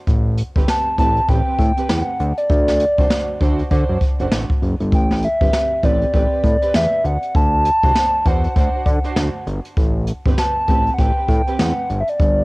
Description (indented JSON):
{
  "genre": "R&B, new jack swing",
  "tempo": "99 BPM",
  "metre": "4/4",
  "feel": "swing 60% on 16ths",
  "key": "A dorian",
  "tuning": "A4 = 440 Hz",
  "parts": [
    { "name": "fat analog bass", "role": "bass", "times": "0.1-12.4 s", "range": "F#1 to D3", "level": "-20 LUFS", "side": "equal", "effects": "none" },
    { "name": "jazz brush drum kit", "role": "drums", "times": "0.1-12.4 s", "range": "hi-hat, kick drum, snare drum", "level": "-18 LUFS", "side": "equal", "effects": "cassette tape" },
    { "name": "dark studio string section", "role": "stabs", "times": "0.6-11.6 s", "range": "C4 to C5", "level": "-27 LUFS", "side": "right 5 dB", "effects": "none" },
    { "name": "hollow clarinet-like synth lead", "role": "melody", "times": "0.7-12.4 s", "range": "D5 to A5", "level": "-19 LUFS", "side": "equal", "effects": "chorus, cassette tape" }
  ],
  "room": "light reverb, small room ambience",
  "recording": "home recording on cassette",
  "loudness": "-15 LUFS",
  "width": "side -23 dB against mid",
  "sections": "0.0-12.4 A section",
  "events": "none",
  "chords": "0.1 Am9; 2.2 D7; 4.9 Am9; 7.0 D7; 9.8 Am9; 11.9 Gmaj7(no3)"
}